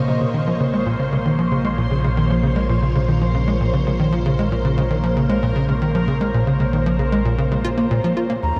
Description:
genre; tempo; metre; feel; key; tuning
ambient, sequencer-driven space music; 115 BPM; 4/4; straight; Bb minor; A4 = 440 Hz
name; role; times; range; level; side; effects
phased string machine; sustained chords; 0.0-8.6 s; Bb2 to F5; -26 LUFS; equal; ensemble chorus, phaser
tight sequencer bass; riff; 0.0-8.6 s; Eb2 to F4; -22 LUFS; equal; lush chorus, delay
analog drone; bass; 0.8-8.6 s; Bb1 to Eb2; -26 LUFS; equal; chorus
bubbling stepped-filter texture; texture; 0.0-8.5 s; Bb4 to C6; -33 LUFS; equal; chorus, built-in reverb
wooden flute; melody; 8.4-8.6 s; Bb5; -25 LUFS; equal; none
room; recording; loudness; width
wet shimmer reverb, RT60 8.7 s; dark, warm production; -19 LUFS; mono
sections
0.0-8.4 A section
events
filter sweep on analog synth bass 0.0-8.4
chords
0.0 Bbmadd9

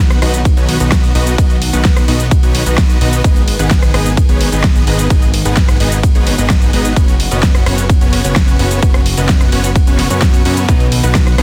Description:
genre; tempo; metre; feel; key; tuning
EDM, festival progressive house; 129 BPM; 4/4; straight; B major; A4 = 438 Hz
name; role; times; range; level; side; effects
lush unison pad; sustained chords; 0.0-11.4 s; C#3 to G#4; -26 LUFS; equal; chorus, sidechain pumping
dense compressed supersaw; riff; 0.0-11.4 s; B3 to F#5; -21 LUFS; equal; sidechain pumping, delay
fat analog bass; bass; 0.0-11.4 s; F#1 to F#2; -19 LUFS; equal; sidechain pumping
big-room dance drum kit; drums; 0.1-11.4 s; hi-hat, ride cymbal, rim click, shaker, snare drum; -22 LUFS; equal; overdrive
electronic kick drum; drums; 0.5-11.2 s; none; -13 LUFS; equal; overdrive
electric guitar at the edge of break-up; accompaniment; 10.7-11.4 s; B2 to B4; -20 LUFS; equal; subtle chorus, sidechain pumping
room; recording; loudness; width
little or no reverb; dense, heavily limited modern master; -12 LUFS; mono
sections
0.0-11.4 A section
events
none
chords
0.0 B; 3.2 G#m; 7.0 F#sus4; 10.7 B

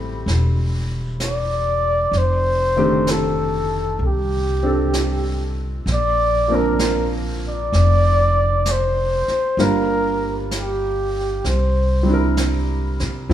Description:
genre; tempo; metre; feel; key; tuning
jazz ballad; 64 BPM; 4/4; swing 69% on 8ths; F major; A4 = 440 Hz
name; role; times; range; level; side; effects
clear grand piano; accompaniment; 0.0-13.3 s; Eb3 to Bb4; -23 LUFS; equal; none
upright bass; bass; 0.0-13.3 s; E1 to C3; -21 LUFS; equal; none
jazz brush drum kit; drums; 0.3-13.3 s; brushed snare drum, hi-hat, snare drum; -30 LUFS; right 2 dB; none
trumpet with bucket mute; melody; 1.2-12.3 s; G4 to D5; -20 LUFS; equal; none
room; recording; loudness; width
light reverb; studio ambience; -17 LUFS; side -11 dB against mid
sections
0.0-13.3 A section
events
none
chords
0.0 Am7; 2.1 F13; 5.8 Bb; 9.6 Gm7; 11.4 C9

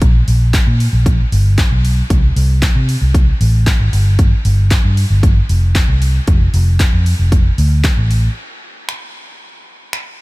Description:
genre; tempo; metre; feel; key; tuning
dance-pop; 115 BPM; 4/4; straight; unclear; A4 = 440 Hz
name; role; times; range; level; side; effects
vintage muted fingered electric bass; bass; 0.0-8.3 s; F1 to C3; -12 LUFS; equal; sidechain pumping
pop drum kit; drums; 0.0-10.1 s; finger snaps, handclaps, hi-hat, kick drum; -15 LUFS; equal; overdrive
room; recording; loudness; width
little or no reverb; none; -10 LUFS; side -21 dB against mid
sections
0.0-8.4 A section; 8.4-10.2 B section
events
none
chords
none

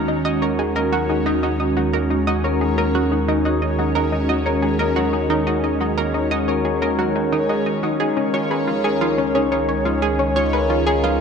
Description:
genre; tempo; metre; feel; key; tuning
ambient, sequencer-driven space music; 89 BPM; 4/4; straight; Eb minor; A4 = 439 Hz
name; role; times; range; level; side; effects
sweeping resonant pad; sustained chords; 0.0-11.2 s; Eb3 to Gb4; -21 LUFS; right 1 dB; lush chorus
Celtic harp; arpeggios; 0.0-11.2 s; Eb4 to Bb4; -25 LUFS; left 6 dB; auto-pan, low-pass filter, tape echo
round analog bass; bass; 0.0-11.2 s; Db2 to Eb2; -26 LUFS; equal; none
bubbling stepped-filter texture; texture; 0.0-11.2 s; Db4 to Db5; -30 LUFS; equal; chorus, built-in reverb
analog pluck; riff; 0.1-11.1 s; Db4 to Eb5; -23 LUFS; right 1 dB; chorus, tape echo
room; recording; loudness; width
wet spring reverb, RT60 2.6 s; echo-heavy mix, nothing above 10.3 kHz; -17 LUFS; side -6 dB against mid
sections
0.0-11.2 A section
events
none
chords
0.0 Ebm; 8.0 Db

